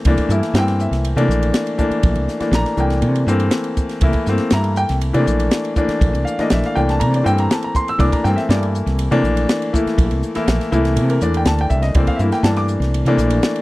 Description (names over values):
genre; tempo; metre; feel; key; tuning
electric jazz fusion; 121 BPM; 4/4; straight; C mixolydian; A4 = 440 Hz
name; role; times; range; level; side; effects
woody fretless electric bass; bass; 0.0-13.4 s; Bb1 to C3; -18 LUFS; equal; none
crisp fusion drum kit; drums; 0.0-13.6 s; hi-hat, kick drum, ride cymbal, snare drum; -20 LUFS; equal; none
clear grand piano; accompaniment; 0.1-13.6 s; E3 to E6; -18 LUFS; left 1 dB; none
room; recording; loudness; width
little or no reverb; dry, close 1970s-style studio recording; -15 LUFS; side -19 dB against mid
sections
0.0-13.6 A section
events
none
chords
0.0 C13